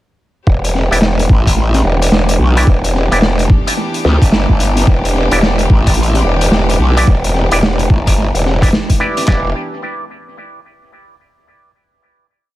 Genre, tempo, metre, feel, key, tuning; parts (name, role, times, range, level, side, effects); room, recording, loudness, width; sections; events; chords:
glitch hop; 109 BPM; 4/4; swing 62% on 16ths; E minor; A4 = 440 Hz
warm studio string section; sustained chords; 0.5-9.5 s; E3 to G4; -21 LUFS; equal; sidechain pumping
growl bass; bass; 0.5-9.5 s; E1 to D2; -13 LUFS; equal; chorus, tube saturation
boom bap sampler-style drum kit; drums; 0.5-9.4 s; handclaps, kick drum, snare drum; -12 LUFS; equal; overdrive
raw garage drum kit; drums; 0.6-9.3 s; hi-hat, snare drum; -17 LUFS; equal; tape echo
auto-wah clav; stabs; 0.9-9.5 s; E4 to D5; -20 LUFS; right 1 dB; sidechain pumping, tape echo
small room ambience; echo-heavy mix; -10 LUFS; side -16 dB against mid
0.5-9.3 drop; 9.3-11.5 final chord
drop 0.5-9.3
0.5 Em7